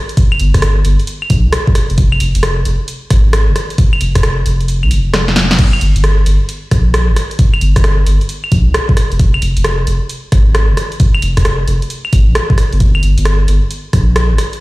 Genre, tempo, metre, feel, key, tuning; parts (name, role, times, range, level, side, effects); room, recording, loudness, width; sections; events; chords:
UK garage, two-step garage; 133 BPM; 4/4; swing 65% on 16ths; G phrygian; A4 = 443 Hz
punchy analog drum machine; drums; 0.1-14.6 s; claves, crash cymbal, hi-hat, rim click, snare drum; -18 LUFS; equal
electronic kick drum; drums; 0.2-14.1 s; -11 LUFS; equal; overdrive
soft dub sub bass; bass; 0.4-14.4 s; F1 to C2; -12 LUFS; equal
little or no reverb; played on a big sound system in a bare room, stone room reverb; -10 LUFS; side -20 dB against mid
0.0-14.6 A section
kick drops out 4.7-5.6; drum fill 5.1-5.6